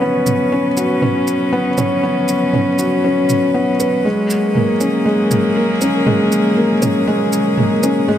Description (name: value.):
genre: piano and strings electronica.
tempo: 119 BPM.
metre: 4/4.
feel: straight.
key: unclear.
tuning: A4 = 440 Hz.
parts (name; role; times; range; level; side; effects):
warm string quartet; sustained chords; 0.0-8.2 s; G#2 to B4; -20 LUFS; left 1 dB; low-pass filter.
felt-muted upright piano; riff; 0.0-8.2 s; G#3 to B4; -14 LUFS; left 1 dB; tape echo.
electronic toms and shaker; drums; 0.3-7.9 s; none; -22 LUFS; right 2 dB; overdrive.
room: moderate huge ambient reverb, RT60 6.5 s.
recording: none.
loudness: -13 LUFS.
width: side -10 dB against mid.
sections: 0.0-8.2 A section.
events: build-up 0.0-8.2.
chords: 0.0 Bsus2; 4.0 F#add9.